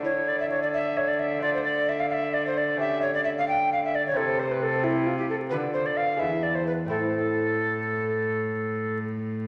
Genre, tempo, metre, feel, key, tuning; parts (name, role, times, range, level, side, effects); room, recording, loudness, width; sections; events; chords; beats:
classical, baroque-style sonata movement with continuo; 87 BPM (dotted quarters); 12/8; straight; A minor from 4.2 s; A4 = 441 Hz
tenor recorder; melody; 0.0-9.0 s; E4 to G5; -28 LUFS; equal
lute; accompaniment; 0.0-9.5 s; E2 to G4; -36 LUFS; equal
rich cello; bass; 0.0-9.5 s; E2 to D3; -32 LUFS; equal
wet recital hall reverb, RT60 1.3 s; vinyl crackle; -26 LUFS; mono
0.0-9.5 A section
0.0 A5/D; 1.4 Dm; 2.8 A7/D; 4.2 Am/C; 5.5 Bdim/D; 6.2 E; 6.9 Am
0.05 0.74 | 1.43 2.12 2.80 3.48 | 4.16 4.84 5.52 6.20 | 6.90 7.61 8.32 9.03